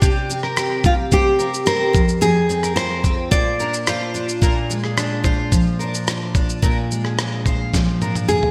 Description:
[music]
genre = acoustic pop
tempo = 109 BPM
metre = 4/4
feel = straight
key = unclear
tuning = A4 = 440 Hz
[part]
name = picked steel-string acoustic guitar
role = accompaniment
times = 0.0-8.5 s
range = F2 to G4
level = -24 LUFS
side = equal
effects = double-tracked
[part]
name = fingerpicked steel-string acoustic guitar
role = arpeggios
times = 0.0-8.1 s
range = G4 to C5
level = -31 LUFS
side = equal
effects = analog chorus, delay
[part]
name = dusty soul sampler-style drum kit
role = drums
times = 0.0-8.5 s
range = kick drum, rim click, shaker, snare drum, toms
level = -22 LUFS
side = equal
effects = gated reverb
[part]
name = nylon-string guitar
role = melody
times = 0.9-4.1, 8.3-8.5 s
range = F4 to D5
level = -22 LUFS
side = equal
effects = delay
[sound]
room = moderate lush hall reverb, RT60 1.5 s, small room ambience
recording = bright 1980s-style digital production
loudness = -19 LUFS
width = mono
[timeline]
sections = 0.0-4.4 A section; 4.4-8.5 B section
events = drum fill 7.7-8.5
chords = 0.0 C5; 1.9 Fm; 3.3 Bb; 4.4 Bb7

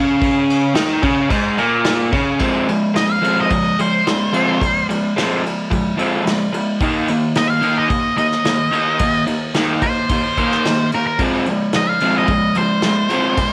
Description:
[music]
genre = garage rock duo or trio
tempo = 109 BPM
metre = 4/4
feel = straight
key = F minor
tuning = A4 = 440 Hz
[part]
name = raw garage guitar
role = riff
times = 0.0-13.5 s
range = Ab2 to Eb4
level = -19 LUFS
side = equal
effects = overdrive
[part]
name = soft brush drum kit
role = drums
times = 0.2-13.5 s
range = crash cymbal, kick drum, ride cymbal, snare drum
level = -25 LUFS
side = equal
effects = none
[part]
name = octave-fuzz lead guitar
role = melody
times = 3.0-13.5 s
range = Bb4 to F5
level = -21 LUFS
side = equal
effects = distortion
[sound]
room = light reverb, studio reverb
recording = none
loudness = -17 LUFS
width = mono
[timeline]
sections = 0.0-2.4 A section; 2.4-13.5 B section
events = none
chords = 0.0 Ab5; 2.4 Fm; 6.8 Eb5; 11.2 Fm

